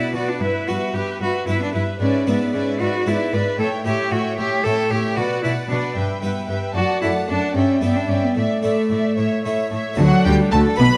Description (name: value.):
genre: classical, baroque-style concerto movement with solo episodes.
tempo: 75 BPM (dotted quarters).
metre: 6/8.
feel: straight.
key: D major.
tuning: A4 = 440 Hz.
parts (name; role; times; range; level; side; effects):
rich cello; melody; 0.0-10.9 s; F#3 to B4; -23 LUFS; equal; none.
rich chamber violin section; melody; 0.0-11.0 s; E5 to B5; -32 LUFS; equal; none.
rich chamber violin section; second line; 0.0-11.0 s; F#4 to F#5; -31 LUFS; equal; none.
harpsichord; accompaniment; 0.0-11.0 s; F#2 to F#4; -29 LUFS; equal; none.
rich studio viola section; accompaniment; 0.0-11.0 s; B3 to D5; -30 LUFS; equal; none.
rich chamber cello section; bass; 0.1-10.9 s; F#2 to D3; -26 LUFS; equal; none.
clear studio double bass section; bass; 10.0-10.9 s; B1 to D2; -24 LUFS; equal; none.
room: light reverb.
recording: close, detailed microphones, vinyl crackle.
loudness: -20 LUFS.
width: mono.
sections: 0.0-10.0 A section.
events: none.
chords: 0.4 Em/G; 2.0 E7/G#; 3.6 A7; 5.2 Bm; 6.0 Em/G; 6.8 D/F#; 7.6 Em7/G; 8.4 Asus4; 9.2 A; 10.0 D.